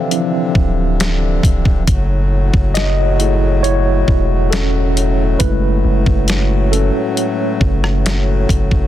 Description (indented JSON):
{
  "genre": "contemporary R&B",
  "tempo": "68 BPM",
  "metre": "4/4",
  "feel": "straight",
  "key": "unclear",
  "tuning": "A4 = 440 Hz",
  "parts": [
    { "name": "mellow tine electric piano", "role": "accompaniment", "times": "0.0-8.9 s", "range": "E3 to F5", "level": "-19 LUFS", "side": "right 1 dB", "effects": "medium stereo tremolo" },
    { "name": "pedal harmonium", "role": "sustained chords", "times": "0.0-8.9 s", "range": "A2 to F#3", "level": "-22 LUFS", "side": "left 6 dB", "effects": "sidechain pumping" },
    { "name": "detuned 8-bit digital drum machine", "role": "drums", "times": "0.1-8.9 s", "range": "hi-hat, kick drum, rim click, snare drum", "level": "-16 LUFS", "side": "equal", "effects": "none" },
    { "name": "long sustained 808-style bass", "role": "bass", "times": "0.6-8.9 s", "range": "D1 to F#1", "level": "-16 LUFS", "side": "equal", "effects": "none" }
  ],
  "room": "little or no reverb",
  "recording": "dense, heavily limited modern master",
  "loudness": "-13 LUFS",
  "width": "side -12 dB against mid",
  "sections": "0.0-8.9 A section",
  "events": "tine electric piano solo 0.0-8.9",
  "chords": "0.0 Dm9; 1.9 F#m9"
}